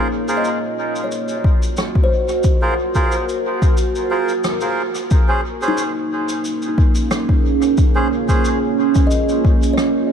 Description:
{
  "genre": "ambient dub",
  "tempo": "90 BPM",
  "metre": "4/4",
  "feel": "swing 53% on 16ths",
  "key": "Bb minor",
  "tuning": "A4 = 440 Hz",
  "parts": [
    { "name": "deep dark ambient pad", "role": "sustained chords", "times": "0.0-10.1 s", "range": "Bb3 to Db5", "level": "-20 LUFS", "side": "right 3 dB", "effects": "chorus, built-in reverb" },
    { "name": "kalimba", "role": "arpeggios", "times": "0.0-10.1 s", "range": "Eb4 to Eb5", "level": "-25 LUFS", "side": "left 3 dB", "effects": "tape echo" },
    { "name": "melodica", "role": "stabs", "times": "0.0-8.5 s", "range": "Db4 to C5", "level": "-24 LUFS", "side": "right 1 dB", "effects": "dub echo" },
    { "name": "shaker and rim click", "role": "drums", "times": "0.3-9.9 s", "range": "none", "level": "-27 LUFS", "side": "equal", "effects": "dub echo" },
    { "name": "electronic kick drum", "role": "drums", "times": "1.4-9.6 s", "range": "none", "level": "-16 LUFS", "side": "left 1 dB", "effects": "overdrive" }
  ],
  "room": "light reverb, small room ambience",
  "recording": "none",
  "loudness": "-15 LUFS",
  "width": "side -8 dB against mid",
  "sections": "0.0-5.1 A section; 5.1-10.1 B section",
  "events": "break 3.8-5.1; band accent 4.4-4.8",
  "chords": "0.0 Gbmaj9#11; 5.1 Bbm7",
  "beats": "0.44 1.11 1.78 | 2.44 3.11 3.78 4.44 | 5.11 5.78 6.44 7.11 | 7.78 8.44 9.11 9.78"
}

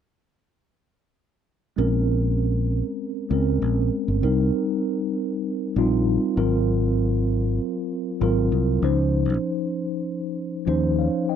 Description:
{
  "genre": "lush 1970s-style soul",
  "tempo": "98 BPM",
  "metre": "4/4",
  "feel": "straight",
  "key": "Bb dorian",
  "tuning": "A4 = 438 Hz",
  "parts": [
    { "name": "mellow tine electric piano", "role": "accompaniment", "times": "1.8-11.4 s", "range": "F3 to G5", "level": "-23 LUFS", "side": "equal", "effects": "medium stereo tremolo" },
    { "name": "fingered electric bass", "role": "bass", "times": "1.8-11.1 s", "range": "G1 to Eb2", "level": "-22 LUFS", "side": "equal", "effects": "none" }
  ],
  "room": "light reverb",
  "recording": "dry, close 1970s-style studio recording",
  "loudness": "-21 LUFS",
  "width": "side -8 dB against mid",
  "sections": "1.8-11.4 A section",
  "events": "none",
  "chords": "1.8 Bbm9; 4.2 Cm7; 6.4 Ab13; 8.8 Dbmaj9",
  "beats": "| 1.78 2.39 3.00 3.62 | 4.23 4.84 5.46 6.07 | 6.68 7.30 7.91 8.52 | 9.14 9.75 10.36 10.98"
}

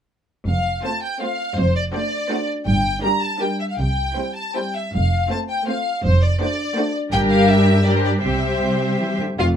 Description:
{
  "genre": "quick classical-period movement for string orchestra",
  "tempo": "154-169 BPM",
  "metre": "3/4",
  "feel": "rubato",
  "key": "F major",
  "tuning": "A4 = 442 Hz",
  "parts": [
    { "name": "rich symphonic violin section", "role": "melody", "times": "0.5-9.5 s", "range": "C5 to Bb5", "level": "-23 LUFS", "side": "left 2 dB", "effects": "none" },
    { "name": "rich symphonic cello section", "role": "bass", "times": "0.5-9.6 s", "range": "F2 to E3", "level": "-22 LUFS", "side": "right 1 dB", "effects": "none" },
    { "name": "warm symphonic double bass section", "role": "bass", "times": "0.5-9.6 s", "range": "F1 to C2", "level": "-21 LUFS", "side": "right 1 dB", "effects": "none" },
    { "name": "warm symphonic violin section", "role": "second line", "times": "0.8-9.5 s", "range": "E4 to C5", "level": "-25 LUFS", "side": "left 1 dB", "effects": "none" },
    { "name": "warm symphonic viola section", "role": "accompaniment", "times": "0.8-9.5 s", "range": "G3 to F4", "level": "-22 LUFS", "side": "equal", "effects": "none" }
  ],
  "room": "light reverb",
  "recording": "close, detailed microphones",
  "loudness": "-18 LUFS",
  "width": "side -8 dB against mid",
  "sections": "0.5-9.4 A section",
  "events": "none",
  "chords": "0.5 F; 1.6 D7/F; 2.7 Gm; 3.8 C; 4.9 F; 6.0 D7/F; 7.1 Gm; 8.2 C",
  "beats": "| 0.47 0.85 1.22 | 1.58 1.94 2.31 | 2.67 3.04 3.40 | 3.78 4.17 4.55 | 4.94 5.31 5.68 | 6.04 6.41 6.76 | 7.12 7.48 7.85 | 8.23 8.62 9.00 | 9.39"
}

